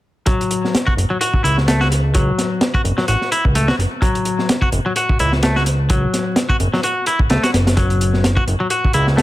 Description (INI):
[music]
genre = breakbeat, breaks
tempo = 128 BPM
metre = 4/4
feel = swing 55% on 16ths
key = F# minor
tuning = A4 = 439 Hz
[part]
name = semi-hollow electric guitar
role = riff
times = 0.3-9.2 s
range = F#3 to F#4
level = -19 LUFS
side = left 1 dB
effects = tube saturation, ping-pong delay
[part]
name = crunchy breakbeat drum kit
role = drums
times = 0.3-9.2 s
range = hi-hat, kick drum, snare drum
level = -18 LUFS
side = equal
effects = none
[part]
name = fat analog bass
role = bass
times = 1.0-9.2 s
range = F#1 to C#2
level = -17 LUFS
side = equal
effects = tube saturation
[sound]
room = studio ambience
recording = none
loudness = -14 LUFS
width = side -16 dB against mid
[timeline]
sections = 0.3-9.2 A section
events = none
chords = 0.3 F#5